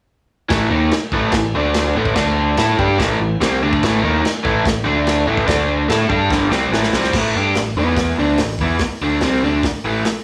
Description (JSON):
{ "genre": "garage rock duo or trio", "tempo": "144 BPM", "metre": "4/4", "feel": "straight", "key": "unclear", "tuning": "A4 = 440 Hz", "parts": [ { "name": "crunchy overdriven guitar", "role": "riff", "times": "0.5-10.1 s", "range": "G2 to A4", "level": "-19 LUFS", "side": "equal", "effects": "none" }, { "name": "growling fingered electric bass", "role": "bass", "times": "0.5-10.0 s", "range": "G1 to A2", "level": "-26 LUFS", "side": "equal", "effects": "overdrive" }, { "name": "crunchy breakbeat drum kit", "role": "drums", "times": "0.5-10.1 s", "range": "crash cymbal, hi-hat, kick drum, snare drum", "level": "-24 LUFS", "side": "equal", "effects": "none" } ], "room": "light reverb", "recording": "small room reverb", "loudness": "-17 LUFS", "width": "mono", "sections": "0.5-7.1 A section; 7.1-10.2 B section", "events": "drum fill 6.3-7.1", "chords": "0.5 A5; 1.5 D5; 1.9 A5; 2.2 D5; 2.6 A5; 4.8 D5; 5.3 A5; 5.5 D5; 5.9 A5; 7.8 E5; 8.2 A5" }